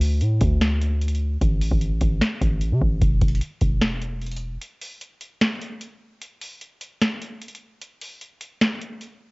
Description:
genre	hip hop, trap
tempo	150 BPM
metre	4/4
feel	half-time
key	unclear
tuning	A4 = 439 Hz
part	warm 808-style bass	bass	0.0-4.6 s	E1 to C3	-22 LUFS	equal	none
part	booming analog drum machine	drums	0.0-9.1 s	hi-hat, kick drum, snare drum	-22 LUFS	equal	vintage 12-bit sampler grit, cassette tape
room	little or no reverb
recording	home recording on cassette, nothing above 7.7 kHz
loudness	-20 LUFS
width	side -31 dB against mid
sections	0.0-9.3 A section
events	break 4.6-9.3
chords	none

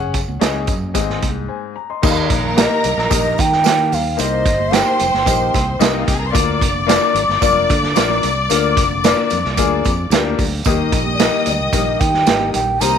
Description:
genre	uptempo 1960s-style soul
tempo	111 BPM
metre	4/4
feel	straight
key	Eb major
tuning	A4 = 440 Hz
part	warm upright piano	accompaniment	0.0-13.0 s	Ab2 to C6	-20 LUFS	left 10 dB	none
part	fingered electric bass	bass	0.0-13.0 s	F1 to Eb3	-23 LUFS	equal	none
part	vintage drum kit	drums	0.1-12.9 s	crash cymbal, hi-hat, kick drum, snare drum	-18 LUFS	right 3 dB	none
part	congas	percussion	0.1-12.7 s	none	-31 LUFS	right 12 dB	none
part	tambourine	percussion	0.2-12.9 s	none	-30 LUFS	right 14 dB	none
part	rich studio string section	second line	2.0-13.0 s	Eb4 to Eb6	-21 LUFS	left 3 dB	none
part	breathy hollow long shakuhachi	melody	2.6-6.1, 11.1-13.0 s	D5 to Bb5	-18 LUFS	right 3 dB	none
part	mellow tonewheel organ	sustained chords	10.7-13.0 s	Eb3 to G4	-26 LUFS	right 1 dB	chorus vibrato, wide subtle chorus
room	moderate spring reverb, RT60 1.7 s, small room ambience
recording	1960s-style stereo with parts hard left and right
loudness	-14 LUFS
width	side -8 dB against mid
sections	0.0-2.0 A section; 2.0-13.0 B section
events	break 1.5-2.0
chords	0.0 Gbsus2; 1.0 Ab; 2.0 Eb; 4.2 Cm7; 6.3 Bb; 10.7 Eb

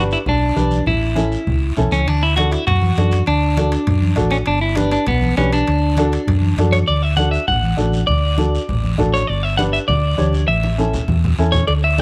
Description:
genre	latin, cumbia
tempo	200 BPM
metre	4/4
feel	straight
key	D major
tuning	A4 = 439 Hz
part	clean electric guitar	melody	0.0-12.0 s	B3 to F#5	-22 LUFS	equal	spring reverb
part	warm upright piano	accompaniment	0.0-12.0 s	C#4 to C#5	-25 LUFS	equal	none
part	hollow-body short-scale fingered electric bass	bass	0.0-12.0 s	G1 to F#2	-20 LUFS	equal	none
part	guiro	percussion	0.1-12.0 s	none	-37 LUFS	equal	none
part	congas	percussion	0.3-12.0 s	none	-25 LUFS	equal	none
part	timbales and cowbell	percussion	2.1-6.9, 11.7-11.8 s	none	-34 LUFS	equal	none
room	little or no reverb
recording	close, detailed microphones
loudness	-17 LUFS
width	mono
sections	0.0-6.9 A section; 6.9-12.0 B section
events	drum fill 10.5-11.7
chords	0.0 G; 0.9 A; 2.1 D; 4.5 G; 5.7 D; 9.3 G; 10.5 A

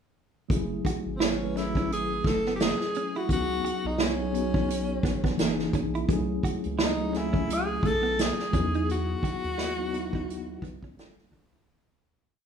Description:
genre	R&B, neo-soul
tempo	86 BPM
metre	4/4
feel	swing 58% on 16ths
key	F# dorian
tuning	A4 = 441 Hz
part	mellow tine electric piano	accompaniment	0.5-11.7 s	E3 to G#5	-31 LUFS	left 1 dB	medium stereo tremolo
part	round analog bass	bass	0.5-11.6 s	F1 to E2	-34 LUFS	equal	none
part	unplugged drum kit	drums	0.5-11.7 s	hi-hat, kick drum, snare drum	-28 LUFS	right 1 dB	none
part	clean electric guitar	second line	0.9-11.6 s	A3 to F#4	-34 LUFS	right 8 dB	none
part	breathy tenor saxophone	melody	1.2-10.9 s	B#3 to A4	-30 LUFS	left 1 dB	tape echo
room	moderate studio reverb, RT60 0.6 s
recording	rough home demo mix, studio reverb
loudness	-25 LUFS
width	side -7 dB against mid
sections	0.5-11.7 groove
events	fade-out 8.9-11.7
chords	0.5 F#m9; 3.3 C#7sus4; 5.4 F#13; 6.1 B13sus4; 8.5 Emaj9; 11.0 Gm9

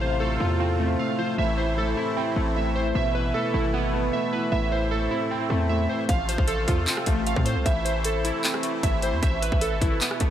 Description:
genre	hip hop, trap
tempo	153 BPM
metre	4/4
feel	half-time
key	A minor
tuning	A4 = 441 Hz
part	dark baby grand piano	accompaniment	0.0-6.1 s	A2 to F4	-29 LUFS	equal	low-pass filter
part	musette accordion	sustained chords	0.0-10.3 s	B2 to F4	-32 LUFS	left 1 dB	none
part	glassy digital keys	arpeggios	0.0-10.3 s	A3 to F5	-26 LUFS	right 1 dB	chorus, low-pass filter, ping-pong delay
part	hard-hitting 808-style bass	bass	0.0-10.3 s	G#1 to A2	-26 LUFS	equal	none
part	trap drum kit	drums	6.1-10.3 s	handclaps, hi-hat, kick drum, rim click	-25 LUFS	equal	none
room	digital ambience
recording	none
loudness	-22 LUFS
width	side -10 dB against mid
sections	0.0-10.3 A section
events	none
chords	0.0 F/A; 1.4 Am; 3.0 Esus4; 4.5 Am; 6.1 F/A; 7.7 Am; 9.2 Esus4

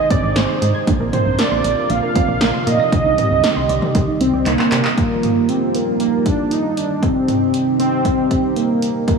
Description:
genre	synth-pop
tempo	117 BPM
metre	4/4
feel	straight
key	Eb major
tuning	A4 = 440 Hz
part	wide unison lead	melody	0.0-9.2 s	Bb3 to F5	-17 LUFS	right 2 dB	tape echo
part	chorused pulse-width pad	sustained chords	0.0-9.2 s	Ab2 to Ab4	-23 LUFS	right 1 dB	none
part	soft round pluck	arpeggios	0.0-4.9 s	D3 to Bb6	-25 LUFS	right 4 dB	chorus, tape echo
part	solid FM bass	bass	0.1-4.8 s	Ab1 to C3	-21 LUFS	equal	none
part	punchy analog drum machine	drums	0.1-9.2 s	handclaps, hi-hat, kick drum, snare drum, toms	-20 LUFS	equal	none
room	wet lush hall reverb, RT60 2.3 s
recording	dreamy mix soaked in reverb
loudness	-14 LUFS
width	side -5 dB against mid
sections	0.0-5.0 A section; 5.0-9.2 B section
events	drum fill 4.5-5.0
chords	0.0 Ab; 0.9 Bbadd9; 2.9 Cmadd9; 5.0 Ebadd9; 7.0 Cm

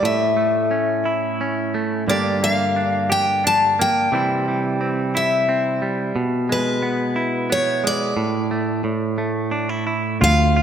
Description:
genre	acoustic folk-pop ballad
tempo	88 BPM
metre	3/4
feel	straight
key	unclear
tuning	A4 = 440 Hz
part	picked steel-string acoustic guitar	melody	0.0-10.6 s	B4 to A5	-20 LUFS	left 2 dB	none
part	direct-recorded clean electric guitar	accompaniment	0.0-10.6 s	D2 to G4	-21 LUFS	right 2 dB	none
part	vintage muted fingered electric bass	bass	10.2-10.6 s	D2	-16 LUFS	equal	none
room	moderate concert hall reverb, RT60 2.2 s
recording	none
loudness	-18 LUFS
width	side -8 dB against mid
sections	0.0-10.2 A section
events	none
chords	0.0 A; 2.1 Gm; 4.1 C; 6.2 E/B; 8.2 N.C.; 8.9 A5

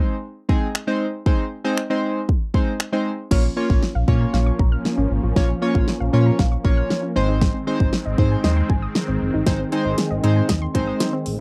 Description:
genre	dance-pop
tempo	117 BPM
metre	4/4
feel	straight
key	Bb minor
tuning	A4 = 440 Hz
part	chorused retro synth keys	accompaniment	0.0-11.1 s	Ab3 to Db5	-26 LUFS	equal	none
part	pop drum kit	drums	0.5-11.4 s	crash cymbal, finger snaps, hi-hat, kick drum, snare drum	-22 LUFS	equal	none
part	filtered supersaw swell	sustained chords	3.3-11.4 s	Eb3 to Db4	-30 LUFS	equal	sidechain pumping
part	soft round pluck	arpeggios	3.3-11.2 s	Eb3 to F6	-32 LUFS	equal	chorus, sidechain pumping, slapback echo
part	sub bass with octave	bass	3.3-11.4 s	Gb1 to Bb2	-23 LUFS	equal	sidechain pumping
room	little or no reverb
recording	dry, close 1970s-style studio recording, high-pass filter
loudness	-20 LUFS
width	mono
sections	0.0-3.3 A section; 3.3-11.4 B section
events	build-up 3.3-11.4; drum fill 3.3-11.4; filter sweep 3.3-11.4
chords	0.0 Ab; 3.3 Bbm; 7.2 Ab

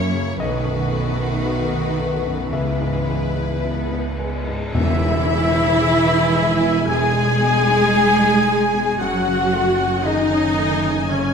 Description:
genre	cinematic, emotional film score for orchestra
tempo	56 BPM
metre	4/4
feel	rubato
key	E major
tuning	A4 = 440 Hz
part	warm studio violin section	melody	0.0-11.3 s	B4 to G#5	-30 LUFS	left 4 dB	none
part	rich studio violin section	second line	0.0-11.3 s	E4 to G#5	-28 LUFS	left 3 dB	none
part	rich studio viola section	accompaniment	0.0-11.3 s	G#3 to G#4	-23 LUFS	right 1 dB	none
part	warm concert grand piano	accompaniment	0.0-11.3 s	B1 to F#5	-27 LUFS	left 4 dB	none
part	mellow French horn section	sustained chords	0.0-11.3 s	G#3 to G#4	-25 LUFS	left 3 dB	none
part	rich studio double bass section	bass	0.0-11.3 s	E1 to F#2	-25 LUFS	right 2 dB	none
part	rich symphonic cello section	bass	0.0-11.3 s	C#3 to G#3	-24 LUFS	right 3 dB	none
part	cymbal swell and tam-tam	percussion	0.4-9.0 s	none	-32 LUFS	left 2 dB	none
part	bright silver concert flute	second line	4.7-11.3 s	C#5 to G#5	-25 LUFS	left 2 dB	none
part	timpani	percussion	4.7-6.3 s	E2	-24 LUFS	equal	none
part	warm oboe	second line	4.8-11.3 s	C#5 to G#5	-27 LUFS	right 2 dB	none
room	wet scoring stage reverb, RT60 1.8 s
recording	none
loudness	-16 LUFS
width	side -6 dB against mid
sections	0.0-4.7 A section; 4.7-11.3 B section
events	band accent 4.7-5.8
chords	0.4 B7; 2.5 C#m7; 4.7 Emaj7; 9.0 F#madd9

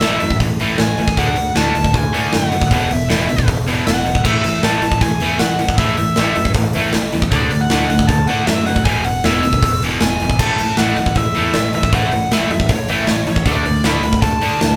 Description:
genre	punk rock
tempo	156 BPM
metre	4/4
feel	straight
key	unclear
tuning	A4 = 441 Hz
part	smooth overdriven lead guitar	melody	0.0-14.8 s	C#5 to B5	-23 LUFS	equal	none
part	distorted electric guitar	riff	0.0-14.8 s	E2 to D4	-21 LUFS	equal	distortion
part	fingered electric bass	bass	0.0-14.8 s	E1 to A2	-26 LUFS	equal	none
part	big rock drum kit	drums	0.0-14.7 s	crash cymbal, hi-hat, kick drum, snare drum	-20 LUFS	equal	none
room	light reverb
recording	band playing live in one room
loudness	-16 LUFS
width	mono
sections	0.0-14.8 A section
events	none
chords	0.0 A5; 1.2 D; 2.7 E5; 4.2 A5; 7.3 D; 8.9 E; 10.4 A5; 13.5 D5

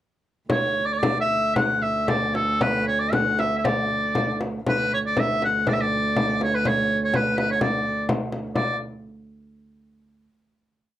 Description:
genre	medieval dance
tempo	113-133 BPM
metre	2/4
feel	straight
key	D major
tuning	A4 = 438 Hz
part	bright shawm	melody	0.5-8.8 s	A4 to F#5	-23 LUFS	equal	none
part	rich viola da gamba	drone	0.5-8.6 s	D2	-28 LUFS	right 2 dB	none
part	frame drum	percussion	0.5-8.8 s	none	-26 LUFS	left 2 dB	none
room	moderate studio ambience, RT60 0.5 s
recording	dark, warm production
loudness	-20 LUFS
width	side -12 dB against mid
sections	0.5-8.6 A section; 8.6-9.5 final note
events	speeding up 0.5-9.5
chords	none

